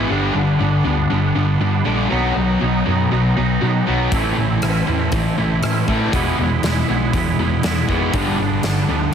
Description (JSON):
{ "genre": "quiet-loud alternative rock", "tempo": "120 BPM", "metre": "4/4", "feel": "straight", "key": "A minor", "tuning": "A4 = 439 Hz", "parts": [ { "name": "twangy electric guitar", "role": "arpeggios", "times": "0.0-9.1 s", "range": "G2 to E4", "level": "-23 LUFS", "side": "right 7 dB", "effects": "ensemble chorus, digital delay, plate reverb" }, { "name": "thick fuzz guitar", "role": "riff", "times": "0.0-9.1 s", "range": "E2 to B3", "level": "-21 LUFS", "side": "left 9 dB", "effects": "distortion" }, { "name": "thick fuzz guitar", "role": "riff", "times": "0.0-9.1 s", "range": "G2 to B3", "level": "-22 LUFS", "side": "right 8 dB", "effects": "distortion" }, { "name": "hollow-body short-scale picked electric bass", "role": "bass", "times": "0.0-9.1 s", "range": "E1 to B2", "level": "-22 LUFS", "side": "equal", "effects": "none" }, { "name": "huge arena drum kit", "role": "drums", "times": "4.1-8.8 s", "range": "hi-hat, kick drum, rim click, snare drum", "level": "-23 LUFS", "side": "equal", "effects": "none" } ], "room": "light reverb, small room ambience", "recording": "heavily compressed radio sound", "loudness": "-16 LUFS", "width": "side -8 dB against mid", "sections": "0.0-9.1 A section", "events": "none", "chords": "0.1 G; 2.1 B; 4.1 Am; 6.1 E; 8.1 G" }